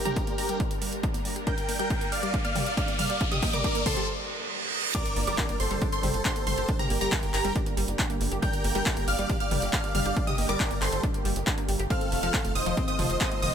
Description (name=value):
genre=uplifting trance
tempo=138 BPM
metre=4/4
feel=straight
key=G minor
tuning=A4 = 441 Hz
part: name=big supersaw lead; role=melody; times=0.0-13.5 s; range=G4 to G5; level=-31 LUFS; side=right 1 dB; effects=sidechain pumping, low-pass filter, tape echo
part: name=wide unison pluck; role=second line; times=0.0-13.5 s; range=Bb5 to G6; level=-35 LUFS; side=right 1 dB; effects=phaser, sidechain pumping, dub echo
part: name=analog string pad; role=sustained chords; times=0.0-13.5 s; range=D3 to Bb4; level=-37 LUFS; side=right 2 dB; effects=ensemble chorus, sidechain pumping
part: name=riser, reverse cymbal and impact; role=sound effects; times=1.5-6.7 s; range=none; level=-34 LUFS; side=right 1 dB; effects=none
part: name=wide unison pluck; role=arpeggios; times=0.1-13.5 s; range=F3 to G4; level=-36 LUFS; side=left 1 dB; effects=flanger, sidechain pumping, dub echo
part: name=big-room dance drum kit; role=drums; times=0.1-13.5 s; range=crash cymbal, handclaps, hi-hat, toms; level=-32 LUFS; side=equal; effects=sidechain pumping on hats, sidechain pumping on toms, sidechain pumping on cymbals
part: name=electronic kick drum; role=drums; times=0.2-13.3 s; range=none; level=-30 LUFS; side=equal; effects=none
part: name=tight sequencer bass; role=bass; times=5.2-13.5 s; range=F1 to G1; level=-32 LUFS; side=equal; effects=tube saturation, sidechain pumping
room=digital ambience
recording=none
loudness=-25 LUFS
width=side -8 dB against mid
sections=0.0-4.9 A section; 4.9-13.5 B section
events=build-up 0.0-4.9; riser 1.5-4.1; filter sweep on synth arpeggio sound 0.0-4.9; filter sweep on synth pluck 0.0-4.9; drum fill 1.5-4.1; break 4.1-4.9; reverse cymbal 4.1-4.9; drop 4.9-13.5; impact 4.9-6.7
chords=0.0 Gm; 11.9 F7